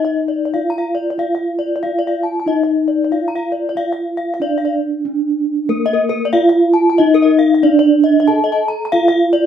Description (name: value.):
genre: gamelan.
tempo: 93 BPM.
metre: 4/4.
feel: straight.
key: unclear.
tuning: A4 = 441 Hz.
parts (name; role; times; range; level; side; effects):
gamelan-type bronze metallophone; melody; 0.0-9.5 s; Bb3-20c to A4-30c; -14 LUFS; right 1 dB; none.
gamelan-type bronze metallophone; arpeggios; 0.0-9.4 s; Bb4-20c to Bb5-20c; -18 LUFS; left 3 dB; none.
room: wet studio reverb, RT60 0.6 s.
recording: band playing live in one room.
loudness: -13 LUFS.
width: side -9 dB against mid.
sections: 0.0-5.7 A section; 5.7-9.5 A section.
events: none.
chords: none.